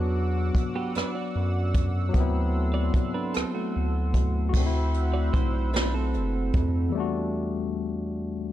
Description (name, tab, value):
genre	slow six-eight R&B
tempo	50 BPM (dotted quarters)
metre	6/8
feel	straight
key	unclear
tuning	A4 = 435 Hz
part	barky tine electric piano	accompaniment	0.0-8.5 s	E2 to F#4	-30 LUFS	left 4 dB	overdrive, auto-pan
part	chorused pulse-width pad	sustained chords	0.0-6.9 s	F#4 to E6	-38 LUFS	right 2 dB	none
part	round analog bass	bass	0.0-6.9 s	F#1 to F#2	-26 LUFS	equal	none
part	jazz brush drum kit	drums	0.5-6.7 s	crash cymbal, hi-hat, kick drum, rim click, snare drum	-27 LUFS	equal	none
part	clean electric guitar	second line	0.8-6.9 s	A3 to D5	-34 LUFS	right 7 dB	tape echo
room	studio reverb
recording	none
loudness	-24 LUFS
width	side -13 dB against mid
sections	0.0-4.5 A section; 4.5-6.9 B section; 6.9-8.5 C section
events	none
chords	0.0 Esus2; 2.1 D13; 6.9 Em11